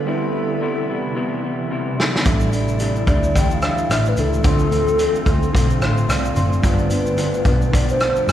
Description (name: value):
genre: indie pop, bedroom pop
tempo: 110 BPM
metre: 4/4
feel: swing 60% on 16ths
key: D dorian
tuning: A4 = 440 Hz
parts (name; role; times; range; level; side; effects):
- hollow clarinet-like synth lead; melody; 0.0-8.3 s; A4 to G5; -23 LUFS; equal; chorus
- electric guitar through a small old amp; accompaniment; 0.0-8.3 s; G2 to F4; -25 LUFS; left 2 dB; warbly pitch drift
- mellow tine electric piano; accompaniment; 0.0-8.3 s; E3 to C6; -28 LUFS; right 4 dB; overdrive
- shimmering ambient pad; sustained chords; 0.0-8.3 s; C3 to B4; -26 LUFS; right 1 dB; chorus, built-in reverb
- loose indie drum kit; drums; 2.0-8.3 s; hi-hat, kick drum, rim click, shaker, snare drum; -20 LUFS; equal; none
- vintage muted picked electric bass; bass; 2.3-8.3 s; F#1 to D2; -21 LUFS; equal; none
room: wet church reverb, RT60 3.3 s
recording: recorded in a church or concert hall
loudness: -16 LUFS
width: side -11 dB against mid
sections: 0.0-8.3 A section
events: drum fill 1.2-2.3; tine electric piano fill 5.5-6.6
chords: 0.1 Cmaj7; 2.3 A7sus4; 4.4 Dm7; 6.6 G7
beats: | 0.07 0.62 1.17 1.71 | 2.26 2.81 3.35 3.90 | 4.45 4.99 5.54 6.09 | 6.63 7.18 7.73 8.27